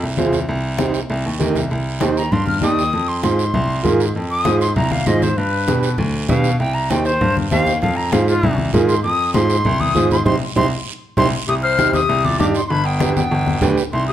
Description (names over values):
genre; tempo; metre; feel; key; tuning
latin, cumbia; 196 BPM; 4/4; straight; C minor; A4 = 441 Hz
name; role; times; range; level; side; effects
clear baby grand piano; bass; 0.0-14.1 s; G1 to B2; -20 LUFS; equal; none
combo organ; accompaniment; 0.2-13.8 s; D4 to D5; -20 LUFS; right 4 dB; none
congas; percussion; 0.2-14.1 s; none; -22 LUFS; left 2 dB; none
guiro; percussion; 0.2-14.1 s; none; -32 LUFS; right 7 dB; none
bright concert flute; melody; 2.2-14.1 s; F4 to F6; -20 LUFS; left 1 dB; plate reverb
breathy clarinet; second line; 11.5-14.1 s; B3 to C5; -23 LUFS; left 5 dB; none
room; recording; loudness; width
moderate studio reverb, RT60 0.7 s; none; -15 LUFS; side -11 dB against mid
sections
0.0-1.7 A section; 1.7-11.5 B section; 11.5-14.1 C section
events
flute solo 1.7-11.5; band accent 10.3-11.5; drum fill 10.7-11.5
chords
0.5 Cm; 2.9 Fm; 5.4 G7; 6.6 Cm; 7.8 Fm; 10.3 Cm; 12.7 G